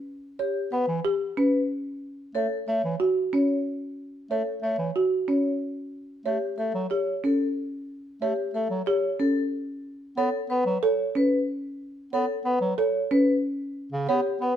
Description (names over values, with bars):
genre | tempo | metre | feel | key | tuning
classical, minimalist pattern music | 184 BPM | 6/4 | straight | unclear | A4 = 443 Hz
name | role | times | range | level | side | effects
vibraphone with medium mallets | melody | 0.4-14.6 s | G4 to C#5 | -29 LUFS | left 2 dB | none
folk marimba with soft mallets | arpeggios | 0.4-14.3 s | C#4 to C#5 | -26 LUFS | right 1 dB | none
clear bass clarinet | accompaniment | 0.7-14.5 s | C#3 to B3 | -28 LUFS | equal | none
room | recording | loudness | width
light reverb | none | -24 LUFS | side -10 dB against mid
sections
0.0-14.6 A section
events
none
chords
0.0 Em (rootless); 2.0 A6/E; 5.9 A7; 9.8 F#m (rootless); 13.8 Em (rootless)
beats
| 0.07 0.39 0.72 1.05 1.37 1.70 | 2.02 2.35 2.68 3.00 3.33 3.65 | 3.98 4.31 4.63 4.96 5.29 5.61 | 5.94 6.26 6.59 6.92 7.24 7.57 | 7.89 8.22 8.55 8.87 9.20 9.52 | 9.85 10.18 10.50 10.83 11.15 11.48 | 11.81 12.13 12.46 12.79 13.11 13.44 | 13.76 14.09 14.41